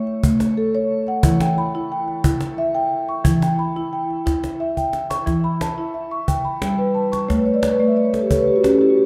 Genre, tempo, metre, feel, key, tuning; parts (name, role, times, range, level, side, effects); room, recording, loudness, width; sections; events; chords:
world meditative, meditative tuned percussion; 89 BPM; 3/4; straight; E dorian; A4 = 442 Hz
marimba with soft mallets; arpeggios; 0.0-9.1 s; E3 to C#6; -20 LUFS; equal; shimmer reverb
cajon; percussion; 0.1-9.1 s; -24 LUFS; equal
wet scoring stage reverb, RT60 1.9 s, small room ambience; dark, warm production; -20 LUFS; mono
0.0-5.3 A section; 5.3-9.1 B section
drum fill 4.8-5.3; marimba fill 7.3-9.1
0.0 A; 1.2 Em; 7.3 A